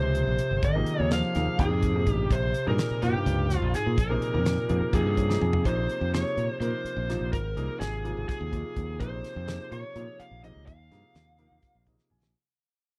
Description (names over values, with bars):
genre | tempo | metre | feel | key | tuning
electric jazz fusion | 251 BPM (eighths) | 7/8 | straight | Bb dorian | A4 = 443 Hz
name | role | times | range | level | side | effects
lead guitar through a small cranked amp | melody | 0.0-11.8 s | G4 to F5 | -34 LUFS | equal | overdrive
mellow bass clarinet | second line | 0.0-5.1 s | G2 to F3 | -34 LUFS | equal | none
warm baby grand piano | accompaniment | 0.0-12.3 s | C3 to Ab5 | -36 LUFS | equal | none
modern bright fingered electric bass | bass | 0.0-12.3 s | G1 to Bb2 | -31 LUFS | equal | none
damped 70s drum kit | drums | 0.1-12.3 s | hi-hat, kick drum, snare drum, toms | -32 LUFS | equal | none
room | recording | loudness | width
small room ambience | dry, close 1970s-style studio recording | -27 LUFS | mono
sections
0.0-5.7 A section; 5.7-12.3 B section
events
grand piano fill 4.9-5.7, 11.6-12.3; drum fill 5.3-5.7, 12.0-12.3; fade-out 5.7-12.3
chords
0.0 Bbm9; 0.6 Ab6; 2.3 Bbm9; 7.3 Ab6; 9.0 Bbm9; 10.7 Ebsus24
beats
0.16 0.40 | 0.63 0.87 1.11 1.35 1.59 1.83 2.07 | 2.31 2.55 2.79 3.03 3.27 3.50 3.74 | 3.98 4.22 4.46 4.70 4.94 5.18 5.42 | 5.66 5.89 6.13 6.37 6.61 6.85 7.09 | 7.33 7.57 7.81 8.05 8.29 8.52 8.76 | 9.00 9.24 9.48 9.72 9.96 10.20 10.44 | 10.68 10.91 11.15 11.39 11.63 11.87 12.11